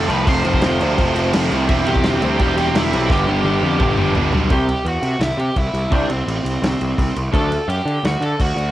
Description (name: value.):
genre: punk rock.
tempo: 170 BPM.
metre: 4/4.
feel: straight.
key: G mixolydian.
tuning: A4 = 440 Hz.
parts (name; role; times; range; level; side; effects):
smooth overdriven lead guitar; melody; 0.0-8.7 s; C4 to C6; -23 LUFS; equal; cassette tape.
crunchy overdriven guitar; riff; 0.0-7.5 s; G2 to A4; -24 LUFS; left 7 dB; cassette tape.
raw garage guitar; riff; 0.0-7.5 s; F2 to D4; -23 LUFS; right 6 dB; overdrive, cassette tape.
scooped high-gain guitar; riff; 0.0-4.5 s; F2 to C4; -24 LUFS; right 2 dB; distortion, cassette tape.
fuzz picked electric bass; bass; 0.0-8.7 s; E1 to D3; -21 LUFS; equal; overdrive.
loose indie drum kit; drums; 0.1-8.7 s; crash cymbal, kick drum, snare drum, toms; -22 LUFS; equal; cassette tape.
room: little or no reverb.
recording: home recording on cassette.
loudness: -15 LUFS.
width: side -14 dB against mid.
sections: 0.0-4.5 A section; 4.5-8.7 B section.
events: drum fill 3.1-4.5; half time 4.5-8.7.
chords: 0.0 F; 1.7 C/E; 3.1 G; 4.5 C; 7.3 D.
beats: | 0.27 0.62 0.98 1.33 | 1.68 2.03 2.39 2.74 | 3.09 3.44 3.80 4.15 | 4.50 4.86 5.21 5.57 | 5.92 6.27 6.63 6.98 | 7.34 7.69 8.04 8.40.